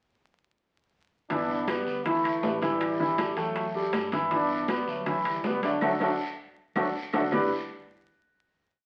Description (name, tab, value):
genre	latin, salsa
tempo	160 BPM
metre	4/4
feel	straight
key	G major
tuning	A4 = 442 Hz
part	mellow trombone section	melody	1.3-7.5 s	D3 to D4	-34 LUFS	equal	none
part	warm grand piano	accompaniment	1.3-7.5 s	D3 to G5	-30 LUFS	equal	none
part	hollow-body short-scale fingered electric bass	bass	1.3-7.5 s	G1 to G2	-48 LUFS	equal	none
part	bongos	percussion	1.3-7.4 s	none	-42 LUFS	equal	none
part	congas	percussion	1.3-7.4 s	none	-40 LUFS	equal	none
part	guiro	percussion	1.3-7.4 s	none	-45 LUFS	equal	none
part	timbales	percussion	1.3-7.4 s	none	-38 LUFS	equal	none
part	claves	percussion	1.7-7.4 s	none	-41 LUFS	equal	none
room	wet club reverb, RT60 0.7 s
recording	very old 78 rpm record, vinyl crackle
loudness	-28 LUFS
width	mono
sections	1.3-7.3 verse; 7.3-8.8 final chord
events	band accent 5.8-7.3; drum fill 6.6-7.3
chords	1.3 G6; 2.8 A5; 4.3 G6; 5.8 D; 7.3 G6